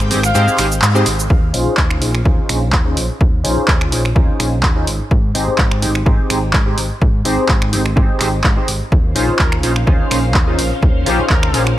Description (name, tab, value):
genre	filtered disco house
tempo	126 BPM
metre	4/4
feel	swing 53% on 16ths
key	Eb mixolydian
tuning	A4 = 440 Hz
part	funky polysynth comp	accompaniment	0.0-11.6 s	C4 to C5	-19 LUFS	equal	chorus, phaser, sidechain pumping, low-pass filter
part	string machine, full ensemble	sustained chords	0.0-1.3, 8.9-11.8 s	C4 to G5	-25 LUFS	equal	ensemble chorus, sidechain pumping, low-pass filter
part	overdriven fingered electric bass	bass	0.0-11.7 s	Ab1 to Ab2	-19 LUFS	equal	sidechain pumping, low-pass filter
part	punchy analog drum machine	drums	0.0-11.8 s	finger snaps, handclaps, hi-hat, shaker	-20 LUFS	right 1 dB	sidechain pumping on perc, sidechain pumping on hats
part	tube shaker	percussion	0.0-11.8 s	none	-31 LUFS	right 7 dB	none
part	brilliant trumpet section	melody	0.2-0.7, 9.4-11.7 s	G4 to F5	-23 LUFS	left 2 dB	sidechain pumping, low-pass filter, dub echo
part	electronic kick drum	drums	1.3-11.4 s	none	-14 LUFS	equal	none
room	light reverb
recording	none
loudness	-12 LUFS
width	side -14 dB against mid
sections	0.0-1.3 A section; 1.3-11.8 B section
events	drop 0.0-1.3; kick drops out 0.3-1.3; band accent 0.8; filter sweep 1.3-11.8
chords	0.0 Abmaj7; 1.3 Eb13sus4; 4.9 Abmaj7; 8.9 Eb13sus4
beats	0.35 0.82 | 1.30 1.78 2.25 2.73 | 3.21 3.68 4.16 4.63 | 5.11 5.59 6.06 6.54 | 7.02 7.49 7.97 8.44 | 8.92 9.40 9.87 10.35 | 10.82 11.30 11.78